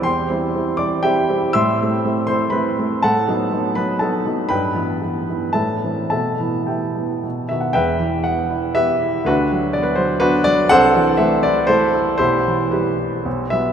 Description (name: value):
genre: classical, romantic character piece for solo piano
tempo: 104-130 BPM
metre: 3/4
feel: rubato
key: E minor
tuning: A4 = 439 Hz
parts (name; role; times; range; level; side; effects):
- warm grand piano; solo; 0.0-13.7 s; E1 to E6; -16 LUFS; equal; none
room: wet cathedral reverb, RT60 6.0 s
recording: in a vast, echoing space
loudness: -16 LUFS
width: side -8 dB against mid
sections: 0.0-7.8 A section; 7.8-13.7 B section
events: none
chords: 0.1 C/E; 1.6 Am; 3.0 B7/A; 4.5 Em/G; 5.6 Am; 6.1 Em/B; 7.2 B; 7.8 Em; 9.3 Bm/D; 10.7 Am/C; 12.2 Em/B